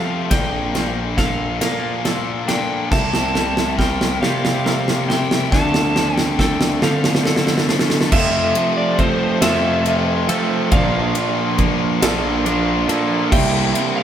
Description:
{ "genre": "post-rock", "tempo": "46 BPM (dotted quarters)", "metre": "6/8", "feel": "straight", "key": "F major", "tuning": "A4 = 441 Hz", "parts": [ { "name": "overdriven slide guitar", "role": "melody", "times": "0.0-14.0 s", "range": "C5 to A5", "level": "-24 LUFS", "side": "equal", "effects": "none" }, { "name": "glassy FM pad", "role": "sustained chords", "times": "0.0-14.0 s", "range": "F3 to A5", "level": "-31 LUFS", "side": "equal", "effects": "none" }, { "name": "felt-muted upright piano", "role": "arpeggios", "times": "0.0-14.0 s", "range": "F4 to F6", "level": "-31 LUFS", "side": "right 3 dB", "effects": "none" }, { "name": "twelve-string electric guitar", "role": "arpeggios", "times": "0.0-14.0 s", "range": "Bb2 to Bb4", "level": "-29 LUFS", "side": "left 1 dB", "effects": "none" }, { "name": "distorted electric guitar", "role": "riff", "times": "0.0-14.0 s", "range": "F2 to F4", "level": "-24 LUFS", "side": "left 8 dB", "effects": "overdrive" }, { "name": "fuzz picked electric bass", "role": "bass", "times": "0.0-13.7 s", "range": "Bb1 to F3", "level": "-24 LUFS", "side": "equal", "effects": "overdrive" }, { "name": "big rock drum kit", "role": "drums", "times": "0.3-14.0 s", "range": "crash cymbal, kick drum, ride cymbal, snare drum", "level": "-20 LUFS", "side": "right 1 dB", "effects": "none" }, { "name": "overdriven semi-hollow guitar", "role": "riff", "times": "8.1-14.0 s", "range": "F2 to F4", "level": "-20 LUFS", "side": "right 6 dB", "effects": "none" } ], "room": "wet stone room reverb, RT60 1.1 s", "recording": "band playing live in one room", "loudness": "-15 LUFS", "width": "side -9 dB against mid", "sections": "0.0-8.1 A section; 8.1-14.0 B section", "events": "build-up 0.0-8.1; drum fill 0.0-8.1", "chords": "0.3 Bbmaj7; 2.9 C7sus4; 5.5 Dm7; 8.1 Fmaj7; 10.7 Bbmaj7; 13.3 C5", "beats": "| 0.32 1.62 | 2.92 4.22 | 5.52 6.83 | 8.13 9.43 | 10.72 12.03 | 13.32" }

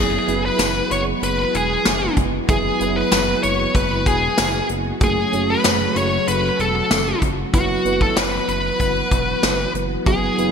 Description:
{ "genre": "1980s-style pop", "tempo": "95 BPM", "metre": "4/4", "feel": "straight", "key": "unclear", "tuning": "A4 = 439 Hz", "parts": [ { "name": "high-gain lead guitar", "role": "melody", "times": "0.0-10.5 s", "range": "F#4 to C#5", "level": "-21 LUFS", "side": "left 2 dB", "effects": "distortion, ping-pong delay" }, { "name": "clear chamber violin section", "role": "second line", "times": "0.0-10.5 s", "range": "F#5 to C#6", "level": "-29 LUFS", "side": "left 2 dB", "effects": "ping-pong delay" }, { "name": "tine electric piano", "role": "accompaniment", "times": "0.0-10.5 s", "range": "F#3 to B4", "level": "-25 LUFS", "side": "right 5 dB", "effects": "ensemble chorus" }, { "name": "soft string machine", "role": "sustained chords", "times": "0.0-10.5 s", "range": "C#3 to F#4", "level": "-27 LUFS", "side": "equal", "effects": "ensemble chorus" }, { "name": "smooth synth bass", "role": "bass", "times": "0.0-10.5 s", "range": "E1 to F#1", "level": "-26 LUFS", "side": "equal", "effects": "none" }, { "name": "soft brush drum kit", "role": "drums", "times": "0.3-10.5 s", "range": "hi-hat, kick drum, snare drum, tambourine", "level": "-20 LUFS", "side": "left 1 dB", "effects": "gated reverb" } ], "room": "moderate lush hall reverb, RT60 1.8 s, small room ambience", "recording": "bright 1980s-style digital production", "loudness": "-16 LUFS", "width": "side -6 dB against mid", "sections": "0.0-10.5 A section", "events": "none", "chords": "0.0 Eadd9; 5.0 F#madd9; 7.5 Bsus4/F#", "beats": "0.59 1.22 1.85 | 2.49 3.12 3.75 4.38 | 5.01 5.64 6.28 6.91 | 7.54 8.17 8.80 9.43 | 10.06" }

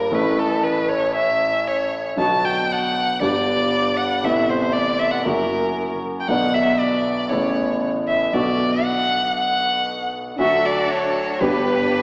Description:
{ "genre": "tango", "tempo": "117 BPM", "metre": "4/4", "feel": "rubato", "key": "unclear", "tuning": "A4 = 440 Hz", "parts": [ { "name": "rich violin", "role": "second line", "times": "0.0-12.0 s", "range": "A4 to A5", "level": "-20 LUFS", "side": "equal", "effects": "none" }, { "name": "warm grand piano", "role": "accompaniment", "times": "0.0-12.0 s", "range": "G1 to A4", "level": "-21 LUFS", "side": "equal", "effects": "none" }, { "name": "upright bass", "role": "bass", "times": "0.0-12.0 s", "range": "F#1 to D2", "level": "-43 LUFS", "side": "equal", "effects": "none" }, { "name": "clear symphonic string section", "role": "stabs", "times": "10.4-12.0 s", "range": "D4 to B4", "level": "-25 LUFS", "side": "equal", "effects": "none" } ], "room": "wet concert hall reverb, RT60 2.2 s", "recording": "recorded in a church or concert hall, small speaker sound", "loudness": "-17 LUFS", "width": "side -36 dB against mid", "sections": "0.0-12.0 A section", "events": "violin solo 0.0-12.0", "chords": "0.1 A; 2.2 Bm; 3.2 G; 4.2 Amadd9; 5.3 F#7; 6.3 Bm; 7.3 Aadd9; 8.3 Bm7; 10.4 D; 11.4 G", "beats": "| 0.12 0.63 1.15 1.66 | 2.18 2.69 3.21 3.72 | 4.24 4.75 5.26 5.77 | 6.28 6.79 7.31 7.82 | 8.33 8.85 9.36 9.88 | 10.39 10.91 11.42 11.94" }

